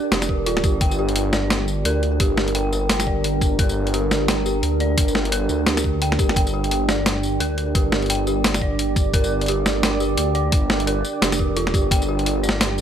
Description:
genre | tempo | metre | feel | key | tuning
half-time drum and bass | 173 BPM | 4/4 | swing 59% on 16ths, half-time | G minor | A4 = 440 Hz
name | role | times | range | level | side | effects
deep dark ambient pad | sustained chords | 0.0-12.8 s | D4 to D5 | -25 LUFS | right 4 dB | chorus, built-in reverb, sidechain pumping
dark detuned synth bell | arpeggios | 0.0-12.8 s | F4 to G5 | -26 LUFS | equal | chorus, phaser, digital delay
dark detuned saw bass | bass | 0.1-12.8 s | F1 to D2 | -24 LUFS | equal | none
boom bap sampler-style drum kit | drums | 0.1-12.8 s | hi-hat, snare drum, tambourine | -23 LUFS | equal | studio reverb
electronic kick drum | drums | 0.3-12.0 s | none | -20 LUFS | equal | studio reverb
room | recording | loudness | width
light reverb | none | -18 LUFS | side -9 dB against mid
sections
0.0-12.8 A section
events
none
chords
0.0 G5

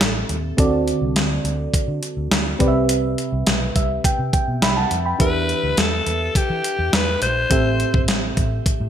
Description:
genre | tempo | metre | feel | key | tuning
1980s-style pop | 104 BPM | 4/4 | straight | E minor | A4 = 440 Hz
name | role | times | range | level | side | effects
raspy alto saxophone | melody | 0.0-0.3, 5.2-8.0 s | G4 to C5 | -23 LUFS | left 2 dB | ping-pong delay
mellow FM electric piano | accompaniment | 0.0-8.9 s | A2 to B5 | -22 LUFS | right 2 dB | chorus
vintage muted fingered electric bass | bass | 0.0-8.9 s | G1 to E3 | -25 LUFS | equal | none
clean 12-bit digital drum machine | drums | 0.0-8.8 s | hi-hat, kick drum, snare drum | -20 LUFS | equal | gated reverb
room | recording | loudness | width
moderate plate reverb, RT60 1.7 s | bright 1980s-style digital production | -17 LUFS | side -9 dB against mid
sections
0.0-8.9 A section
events
FM electric piano fill 3.5-5.2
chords
0.0 Am7; 0.6 D7; 2.6 Cmaj7; 5.2 Em7; 7.5 Am7

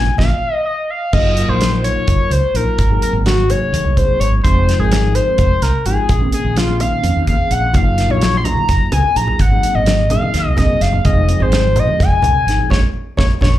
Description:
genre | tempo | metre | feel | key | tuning
electric jazz fusion | 254 BPM (eighths) | 7/8 | straight | Gb lydian | A4 = 438 Hz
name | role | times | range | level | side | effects
overdriven synth lead | melody | 0.0-13.5 s | F4 to C6 | -18 LUFS | left 2 dB | slapback echo
mellow tine electric piano | accompaniment | 0.0-13.5 s | C3 to Bb4 | -22 LUFS | left 1 dB | slow stereo tremolo, phaser, slapback echo
mellow fretless electric bass | bass | 0.0-13.5 s | F1 to F2 | -16 LUFS | equal | none
damped 70s drum kit | drums | 0.2-13.5 s | crash cymbal, hi-hat, kick drum, snare drum | -18 LUFS | right 1 dB | none
congas | percussion | 0.2-0.3, 7.7-13.5 s | none | -22 LUFS | equal | none
room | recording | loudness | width
light reverb, small room ambience | live gig heard through the venue's PA, club reverb | -12 LUFS | side -13 dB against mid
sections
0.0-1.1 A section; 1.1-13.6 A section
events
band accent 0.0-1.1, 12.7-13.6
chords
0.0 Bbm; 1.1 Gbmaj13; 2.8 Ab9; 4.4 Fm7; 6.1 Bbm11; 7.7 Gbmaj13; 9.4 Ab9; 11.1 Fm7; 12.7 Bbm7

